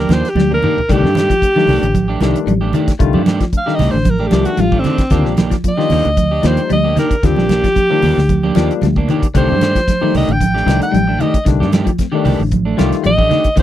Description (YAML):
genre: afrobeat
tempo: 114 BPM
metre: 4/4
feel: swing 53% on 16ths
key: C dorian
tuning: A4 = 440 Hz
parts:
  - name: bright alto saxophone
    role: melody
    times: 0.0-13.6 s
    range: C4 to G5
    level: -17 LUFS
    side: equal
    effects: none
  - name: electric guitar at the edge of break-up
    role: stabs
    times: 0.0-13.6 s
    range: Eb3 to G4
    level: -20 LUFS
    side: right 6 dB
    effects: analog chorus
  - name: fingered electric bass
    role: bass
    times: 0.0-13.6 s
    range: A1 to G2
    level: -17 LUFS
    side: equal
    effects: none
  - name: semi-hollow electric guitar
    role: arpeggios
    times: 0.1-13.6 s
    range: D3 to G3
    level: -20 LUFS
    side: left 6 dB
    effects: ensemble chorus
  - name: damped 70s drum kit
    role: drums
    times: 0.1-13.6 s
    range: hi-hat, kick drum, snare drum, toms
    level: -17 LUFS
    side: equal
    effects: none
  - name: congas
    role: percussion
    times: 0.1-13.5 s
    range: none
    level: -19 LUFS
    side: right 5 dB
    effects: none
  - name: barky tine electric piano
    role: accompaniment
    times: 0.9-13.6 s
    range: Eb3 to F4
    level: -21 LUFS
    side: left 12 dB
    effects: wide subtle chorus
room: little or no reverb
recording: dry, close 1970s-style studio recording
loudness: -12 LUFS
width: side -12 dB against mid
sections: 0.0-13.6 A section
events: alto saxophone solo 0.0-13.6; drum fill 0.4-0.9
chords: 0.0 Ebmaj7; 0.9 Cm69; 5.1 Ebmaj7; 9.3 Cm69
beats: 0.36 | 0.89 1.42 1.95 2.48 | 3.00 3.54 4.06 4.59 | 5.12 5.65 6.18 6.71 | 7.24 7.76 8.29 8.82 | 9.35 9.88 10.41 10.94 | 11.46 11.99 12.52 13.05 | 13.58